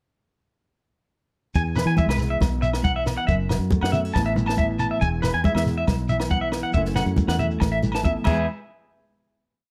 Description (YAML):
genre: highlife guitar band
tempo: 139 BPM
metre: 4/4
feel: straight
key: E major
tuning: A4 = 440 Hz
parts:
  - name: congas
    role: percussion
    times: 1.5-8.5 s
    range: none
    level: -31 LUFS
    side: equal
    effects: none
  - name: shekere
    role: percussion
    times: 1.5-8.5 s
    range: none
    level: -31 LUFS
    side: equal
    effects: none
  - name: fingerpicked steel-string acoustic guitar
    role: accompaniment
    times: 1.6-8.5 s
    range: E2 to G#4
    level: -31 LUFS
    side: equal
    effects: none
  - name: electric guitar at the edge of break-up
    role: arpeggios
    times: 1.6-8.5 s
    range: G#4 to A5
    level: -28 LUFS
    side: equal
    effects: slapback echo
  - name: fingered electric bass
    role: bass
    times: 1.6-8.5 s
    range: E1 to E3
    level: -28 LUFS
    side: equal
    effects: none
  - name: compact cocktail drum kit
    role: drums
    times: 1.6-8.4 s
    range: crash cymbal, kick drum, snare drum, toms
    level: -27 LUFS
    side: equal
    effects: none
  - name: agogo bells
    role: percussion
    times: 1.8-8.3 s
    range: none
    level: -39 LUFS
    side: equal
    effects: none
room: little or no reverb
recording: none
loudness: -23 LUFS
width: mono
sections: 1.6-8.5 groove; 8.5-9.7 final hit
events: drum fill 8.0-8.5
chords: 1.6 E; 2.4 Bsus4; 3.3 F#m; 4.1 Asus2; 5.0 E; 5.9 Bsus4; 6.7 F#m7; 7.6 Asus2; 8.3 E; 8.5 N.C.